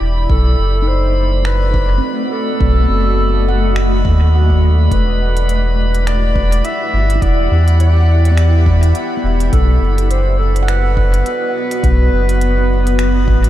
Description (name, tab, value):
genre	ambient dub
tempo	104 BPM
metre	4/4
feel	swing 57% on 16ths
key	unclear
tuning	A4 = 440 Hz
part	granular cloud pad	sustained chords	0.0-13.5 s	A3 to G5	-21 LUFS	equal	built-in reverb
part	warm sub bass	bass	0.0-13.5 s	E1 to E2	-12 LUFS	equal	none
part	drifting glass-harmonics texture	texture	0.0-13.5 s	B5	-28 LUFS	equal	chorus, built-in reverb
part	warm clarinet	melody	0.3-13.5 s	A4 to E5	-22 LUFS	equal	dub echo
part	electronic kick drum	drums	0.3-13.4 s	none	-18 LUFS	equal	overdrive, small room ambience
part	handpan	arpeggios	0.8-12.8 s	B3 to F#5	-26 LUFS	right 1 dB	diffuse ambient delay
part	organic electronic drum kit	drums	1.4-13.5 s	finger snaps, hi-hat	-31 LUFS	equal	small room ambience, dub echo
room	light reverb, digital ambience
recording	none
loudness	-11 LUFS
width	side -13 dB against mid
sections	0.0-13.5 A section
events	none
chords	0.3 B7b9; 4.9 Em9; 9.5 B7